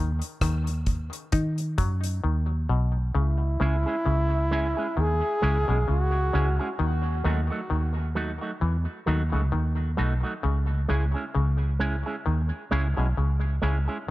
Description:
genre	dub reggae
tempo	66 BPM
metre	4/4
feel	swing 57% on 16ths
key	C# minor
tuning	A4 = 442 Hz
part	muted clav	riff	0.0-13.8 s	B2 to D#4	-33 LUFS	left 5 dB	overdrive, tape echo
part	vintage muted fingered electric bass	bass	0.0-13.9 s	B1 to D#3	-24 LUFS	equal	none
part	damped 70s drum kit	drums	0.2-2.2 s	hi-hat, kick drum, rim click	-27 LUFS	equal	none
part	clear trombone	melody	3.2-6.8 s	E4 to G#4	-29 LUFS	equal	tape echo
part	electric guitar with an envelope filter	accompaniment	3.6-14.0 s	F#3 to G#4	-32 LUFS	right 3 dB	tape echo
room	small room ambience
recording	echo-heavy mix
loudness	-23 LUFS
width	side -17 dB against mid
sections	0.0-3.1 A section; 3.1-14.1 B section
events	break 0.0-3.1; drums muted 2.2-3.1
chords	0.0 B; 3.1 C#m; 6.8 D#dim; 10.4 C#m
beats	0.42 1.33 2.24 | 3.15 4.06 4.97 5.88 | 6.79 7.70 8.61 9.52 | 10.44 11.35 12.26 13.17

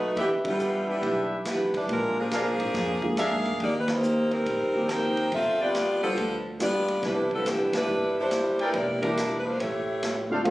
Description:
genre	jazz, big band swing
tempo	140 BPM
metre	4/4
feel	swing 66% on 8ths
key	C major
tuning	A4 = 440 Hz
part	clear saxophone section	melody	0.0-10.3 s	E3 to G5	-26 LUFS	equal	plate reverb
part	upright bass	bass	0.0-10.5 s	E1 to Ab2	-34 LUFS	equal	none
part	mellow trumpet section	stabs	0.2-5.7, 8.6-10.4 s	D4 to G5	-30 LUFS	equal	none
part	vintage drum kit	drums	0.2-10.5 s	hi-hat, kick drum, ride cymbal, snare drum	-36 LUFS	equal	none
part	warm upright piano	accompaniment	0.4-10.5 s	D3 to E5	-31 LUFS	equal	none
part	mellow trombone section	second line	10.5 s	A3 to F4	-20 LUFS	equal	none
room	moderate large studio reverb, RT60 1.1 s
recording	recorded on a phone in the room, club reverb, compression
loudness	-24 LUFS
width	side -17 dB against mid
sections	0.0-10.5 A section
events	band accent 0.4, 3.8, 7.7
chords	0.2 Em7; 1.9 Bb7; 3.6 Eb6; 5.3 G7; 7.0 Cmaj9; 8.7 Em7b5; 9.6 A7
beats	| 0.17 0.60 1.03 1.46 | 1.89 2.31 2.74 3.17 | 3.60 4.03 4.46 4.88 | 5.31 5.74 6.17 6.60 | 7.03 7.45 7.88 8.31 | 8.74 9.17 9.60 10.03 | 10.45

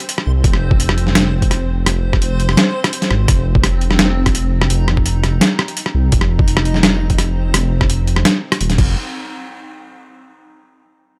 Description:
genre	half-time drum and bass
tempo	169 BPM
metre	4/4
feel	half-time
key	unclear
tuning	A4 = 438 Hz
part	boom bap sampler-style drum kit	drums	0.0-8.9 s	crash cymbal, hi-hat, rim click, snare drum	-19 LUFS	equal	overdrive, small room reverb
part	backwards swelling texture	texture	0.0-9.0 s	C4 to C5	-30 LUFS	equal	built-in reverb
part	dark detuned saw bass	bass	0.3-8.9 s	Eb1 to C2	-18 LUFS	equal	none
part	electronic kick drum	drums	0.4-8.9 s	none	-18 LUFS	equal	overdrive, small room reverb
room	digital ambience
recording	dry, gritty hardware recording, transformer saturation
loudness	-15 LUFS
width	mono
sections	0.0-9.0 A section; 9.0-10.4 B section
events	filter sweep on detuned saw bass 0.0-9.0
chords	0.0 F5; 9.0 N.C.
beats	0.09 | 0.44 0.80 1.15 1.51 | 1.86 2.22 2.57 2.93 | 3.28 3.64 3.99 4.35 | 4.70 5.06 5.41 5.77 | 6.12 6.48 6.83 7.19 | 7.54 7.90 8.25 8.61 | 8.96

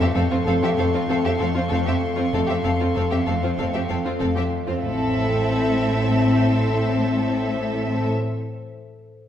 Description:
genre	cinematic, suspense film score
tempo	96 BPM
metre	4/4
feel	straight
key	A minor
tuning	A4 = 440 Hz
part	rich studio violin section	melody	0.0-8.1 s	C5 to F5	-30 LUFS	equal	none
part	clear studio violin section	second line	0.0-8.1 s	F4 to A4	-31 LUFS	left 1 dB	none
part	rich studio viola section	accompaniment	0.0-8.1 s	C4	-28 LUFS	equal	none
part	glass harmonica	sustained chords	0.0-8.1 s	C4 to F5	-28 LUFS	right 1 dB	none
part	warm French horn section	sustained chords	0.0-8.1 s	A3 to C4	-26 LUFS	left 3 dB	none
part	concert harp	riff	0.0-4.9 s	F2 to A3	-28 LUFS	left 5 dB	none
part	warm studio cello section	bass	0.0-8.1 s	F2 to A2	-27 LUFS	right 2 dB	none
part	rich studio violin section	texture	0.0-7.0 s	A5 to C#6	-37 LUFS	left 3 dB	none
part	vibraphone with soft mallets	texture	0.0-4.9 s	A4 to A5	-32 LUFS	left 2 dB	none
part	rich studio double bass section	bass	0.1-8.1 s	F1 to A1	-28 LUFS	right 1 dB	none
part	timpani	percussion	4.8-8.6 s	A2	-39 LUFS	left 1 dB	none
room	wet recital hall reverb, RT60 1.6 s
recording	recorded in a church or concert hall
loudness	-19 LUFS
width	side -10 dB against mid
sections	0.0-4.8 A section; 4.8-7.3 B section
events	none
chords	0.0 F; 4.8 Am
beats	0.46 1.08 1.71 | 2.33 2.96 3.58 4.21 | 4.83 5.46 6.08 6.71

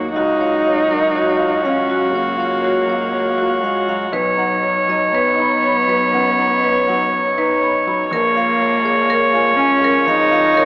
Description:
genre	neoclassical piano and strings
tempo	60 BPM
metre	4/4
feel	rubato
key	unclear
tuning	A4 = 440 Hz
part	dark cello	second line	0.0-10.7 s	F#3 to Eb4	-20 LUFS	right 1 dB	none
part	rich viola	accompaniment	0.0-10.7 s	Gb4 to Db5	-17 LUFS	equal	none
part	warm concert grand piano	accompaniment	0.0-10.7 s	Bb1 to Db5	-22 LUFS	left 1 dB	none
part	dark chamber string section	sustained chords	0.0-10.7 s	Gb3 to F5	-28 LUFS	left 1 dB	none
part	marimba with hard mallets	arpeggios	0.0-10.7 s	Gb4 to B5	-22 LUFS	equal	tape echo
part	warm sub bass	bass	0.0-10.7 s	Bb1 to Eb2	-42 LUFS	equal	none
room	moderate spring reverb, RT60 2.5 s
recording	AM radio sound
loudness	-14 LUFS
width	side -26 dB against mid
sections	0.0-10.7 A section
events	none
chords	0.2 Gbmaj7/Db; 4.1 Badd9; 8.1 Bbm7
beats	| 0.15 1.15 2.14 3.13 | 4.13 5.14 6.14 7.13 | 8.12 9.09 10.07

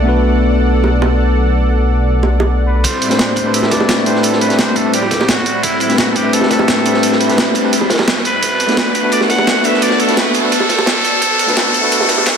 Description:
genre	liquid drum and bass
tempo	172 BPM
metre	4/4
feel	straight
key	A dorian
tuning	A4 = 439 Hz
part	tine electric piano	accompaniment	0.0-12.4 s	A3 to C5	-17 LUFS	left 2 dB	tape echo
part	lush unison pad	sustained chords	0.0-12.4 s	A2 to B5	-20 LUFS	equal	chorus, sidechain pumping
part	dark detuned saw bass	bass	0.0-2.8 s	B1	-14 LUFS	equal	none
part	bongos	percussion	0.8-12.2 s	none	-21 LUFS	right 4 dB	none
part	trumpet with straight mute	melody	2.7-12.4 s	E4 to F#5	-18 LUFS	right 1 dB	low-pass filter, tape echo
part	breakbeat sampler-style drum kit	drums	2.8-12.3 s	hi-hat, snare drum	-18 LUFS	right 1 dB	small room ambience
part	crunchy breakbeat drum kit	drums	2.8-12.4 s	ride cymbal, snare drum	-20 LUFS	right 1 dB	high-pass filter on cymbals, small room ambience, high-pass filter on snare, high-pass filter on room
part	electronic kick drum	drums	2.8-12.2 s	none	-31 LUFS	equal	none
part	riser	sound effects	7.0-12.4 s	none	-21 LUFS	equal	none
room	moderate scoring stage reverb, RT60 1.8 s, studio reverb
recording	dense, heavily limited modern master, high-pass filter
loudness	-11 LUFS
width	side -7 dB against mid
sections	0.0-2.8 A section; 2.8-12.4 B section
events	build-up 2.8-12.4; filter sweep on muted trumpet 2.8-12.4; filter sweep 2.8-12.4; riser 7.0-12.4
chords	0.0 Bm7; 2.8 Am11; 8.4 Bm7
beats	| 0.05 0.40 0.75 1.10 | 1.45 1.80 2.15 2.50 | 2.85 3.19 3.54 3.89 | 4.24 4.59 4.94 5.29 | 5.64 5.98 6.33 6.68 | 7.03 7.38 7.73 8.08 | 8.43 8.78 9.12 9.47 | 9.82 10.17 10.52 10.87 | 11.22 11.57 11.91 12.26

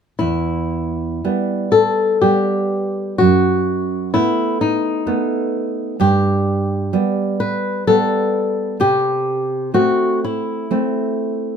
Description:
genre	romantic duo for nylon-string guitar and classical guitar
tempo	57-65 BPM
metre	3/4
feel	rubato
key	E minor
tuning	A4 = 440 Hz
part	flamenco guitar	melody	0.2-11.6 s	D#4 to B4	-18 LUFS	left 3 dB	none
part	nylon-string guitar	accompaniment	0.2-11.6 s	E2 to C4	-19 LUFS	right 4 dB	none
room	light reverb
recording	minimal, uncompressed stereo recording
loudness	-16 LUFS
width	side -7 dB against mid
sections	0.2-11.6 A section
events	none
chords	0.2 Em; 3.2 B7/F#; 6.0 Gadd9; 8.8 C6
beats	| 0.21 1.23 2.22 | 3.19 4.14 5.07 | 6.00 6.94 7.87 | 8.80 9.75 10.71

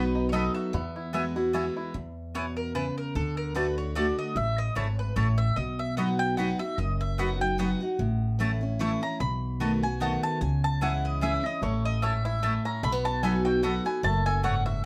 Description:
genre	bluegrass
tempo	149 BPM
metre	3/4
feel	swing 55% on 8ths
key	E major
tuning	A4 = 444 Hz
part	bluegrass banjo	melody	0.0-1.9, 11.6-14.9 s	A3 to A4	-38 LUFS	equal	none
part	mandolin	melody	0.0-14.8 s	A4 to C#6	-34 LUFS	equal	none
part	picked steel-string acoustic guitar	accompaniment	0.0-14.8 s	E2 to F#4	-32 LUFS	equal	none
part	mandolin	stabs	0.0-14.5 s	A3 to B5	-36 LUFS	equal	none
part	upright bass	bass	0.0-14.9 s	F#1 to E2	-32 LUFS	equal	none
room	moderate studio reverb, RT60 0.5 s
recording	none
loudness	-28 LUFS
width	mono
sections	0.0-1.9 A section; 1.9-14.9 B section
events	mandolin solo 1.9-14.9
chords	0.0 B; 0.7 Eadd9; 1.9 E; 3.2 D; 4.4 A; 5.6 B; 8.0 A; 9.2 B7; 10.4 C#m; 11.6 A; 12.8 B; 14.0 F#m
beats	0.33 | 0.74 1.14 1.54 | 1.94 2.35 2.75 | 3.15 3.56 3.96 | 4.37 4.77 5.17 | 5.58 5.98 6.38 | 6.79 7.19 7.60 | 8.00 8.40 8.81 | 9.21 9.61 10.02 | 10.42 10.82 11.22 | 11.63 12.03 12.43 | 12.83 13.23 13.63 | 14.04 14.44 14.84

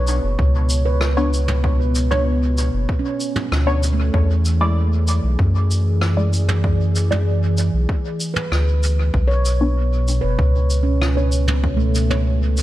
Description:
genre	ambient dub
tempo	96 BPM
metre	4/4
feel	straight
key	B dorian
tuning	A4 = 440 Hz
part	warm analog pad	sustained chords	0.0-12.6 s	B2 to D5	-27 LUFS	equal	chorus
part	handpan	arpeggios	0.0-4.3, 8.3-12.6 s	A3 to C#5	-26 LUFS	right 4 dB	tape echo
part	soft dub sub bass	bass	0.0-12.6 s	F#1 to F#2	-17 LUFS	equal	none
part	vintage brush drum kit	drums	0.1-12.6 s	rim click, shaker, toms	-27 LUFS	equal	dub echo
part	electronic kick drum	drums	0.4-11.8 s	none	-22 LUFS	equal	none
part	filtered dub chord stab	stabs	1.2-12.3 s	G#3 to D5	-26 LUFS	left 1 dB	phaser, cassette tape, dub echo
room	light reverb, small room ambience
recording	none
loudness	-16 LUFS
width	side -15 dB against mid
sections	0.0-12.6 A section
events	none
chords	0.0 Bmadd9; 4.1 E7; 9.1 Bmadd9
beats	0.39 1.01 | 1.64 2.26 2.89 3.51 | 4.14 4.76 5.39 6.01 | 6.64 7.26 7.89 8.51 | 9.14 9.76 10.39 11.01 | 11.64 12.26

